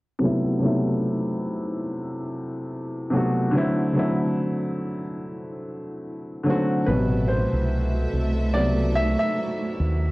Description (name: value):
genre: lo-fi hip hop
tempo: 72 BPM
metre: 4/4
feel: swing 56% on 16ths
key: A dorian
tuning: A4 = 438 Hz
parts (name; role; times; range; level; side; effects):
- warm upright piano; accompaniment; 0.2-10.1 s; B2 to E5; -23 LUFS; equal; cassette tape, low-pass filter
- warm studio string section; sustained chords; 6.9-10.1 s; A3 to E5; -29 LUFS; right 2 dB; none
- deep dub fingered electric bass; bass; 6.9-10.1 s; A1 to D#2; -24 LUFS; equal; none
room: moderate spring reverb, RT60 1.9 s, small room ambience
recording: home recording on cassette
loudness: -22 LUFS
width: side -21 dB against mid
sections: 0.2-6.9 A section; 6.9-10.1 B section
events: filter sweep on upright piano 0.2-6.9; upright piano solo 6.9-10.1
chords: 0.2 Am69; 3.5 D9; 6.9 Am69